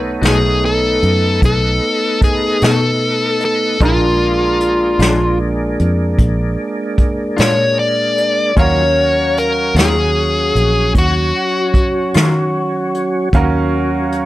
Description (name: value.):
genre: slow blues.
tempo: 50 BPM (dotted quarters).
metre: 12/8.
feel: straight.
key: Eb minor.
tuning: A4 = 441 Hz.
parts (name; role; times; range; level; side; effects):
bright concert grand piano; accompaniment; 0.0-14.3 s; A3 to F5; -24 LUFS; right 4 dB; none.
tonewheel organ; sustained chords; 0.0-14.3 s; Gb3 to D#4; -21 LUFS; right 1 dB; slow rotary speaker, chorus vibrato.
fingered electric bass; bass; 0.0-14.3 s; Bb1 to Eb3; -18 LUFS; equal; none.
semi-hollow electric guitar; accompaniment; 0.2-12.4 s; Bb2 to F#4; -21 LUFS; left 4 dB; tremolo.
vintage brush drum kit; drums; 0.2-14.3 s; hi-hat, kick drum, snare drum; -15 LUFS; equal; none.
dark smooth lead guitar; melody; 0.3-14.3 s; F4 to D5; -16 LUFS; left 2 dB; overdrive, slapback echo.
room: light reverb.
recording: none.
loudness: -12 LUFS.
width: side -16 dB against mid.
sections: 0.0-14.3 A section.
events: none.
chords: 0.0 B7; 3.8 Bb7; 8.6 Ebm9.